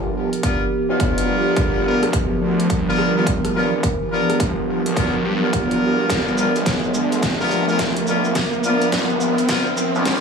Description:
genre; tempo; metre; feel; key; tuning
glitch hop; 106 BPM; 4/4; swing 63% on 16ths; unclear; A4 = 440 Hz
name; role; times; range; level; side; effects
warbly tape-like pad; sustained chords; 0.0-10.2 s; F3 to E5; -22 LUFS; right 1 dB; chorus, built-in reverb, sidechain pumping
phased detuned saw bass; bass; 0.0-10.2 s; F1 to G2; -24 LUFS; equal; phaser, high-pass filter
riser; sound effects; 0.3-10.2 s; none; -26 LUFS; right 1 dB; none
dubstep drum kit; drums; 0.3-10.2 s; hi-hat, rim click, shaker, snare drum; -25 LUFS; equal; overdrive
clear horn section; stabs; 0.4-10.2 s; B3 to A#4; -23 LUFS; left 1 dB; sidechain pumping, low-pass filter, digital delay
electronic kick drum; drums; 0.4-10.2 s; none; -24 LUFS; equal; overdrive
room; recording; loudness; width
moderate plate reverb, RT60 1.8 s; high-pass filter, small room reverb; -17 LUFS; side -6 dB against mid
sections
0.0-10.2 A section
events
build-up 0.0-10.2; filter sweep 0.0-10.2; riser 0.3-10.2; drum fill 6.1-10.2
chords
0.0 G7#9

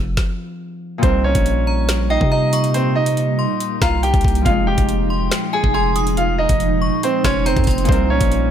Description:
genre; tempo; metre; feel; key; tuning
hip hop, drill; 140 BPM; 4/4; half-time; C phrygian; A4 = 439 Hz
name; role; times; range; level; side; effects
Celtic harp; accompaniment; 0.0-8.5 s; Bb2 to Bb4; -26 LUFS; left 4 dB; low-pass filter
long sustained 808-style bass; bass; 0.0-8.5 s; F1 to C3; -20 LUFS; equal; none
drill drum kit; drums; 0.2-8.4 s; finger snaps, hi-hat, kick drum, rim click, snare drum; -20 LUFS; equal; none
bright concert grand piano; melody; 1.0-8.5 s; C4 to Ab5; -20 LUFS; right 2 dB; low-pass filter
ethereal airy pad; sustained chords; 1.7-8.5 s; Bb2 to Eb4; -24 LUFS; right 2 dB; ensemble chorus, built-in reverb
metallic FM bell; second line; 1.7-7.9 s; G5 to Eb6; -27 LUFS; left 3 dB; chorus, phaser, ping-pong delay
room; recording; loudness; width
little or no reverb; none; -15 LUFS; side -9 dB against mid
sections
0.0-1.0 A section; 1.0-8.5 B section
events
stop 0.2-1.0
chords
0.0 Fm7; 1.0 Cm7; 4.5 Fm7; 7.9 Cm7

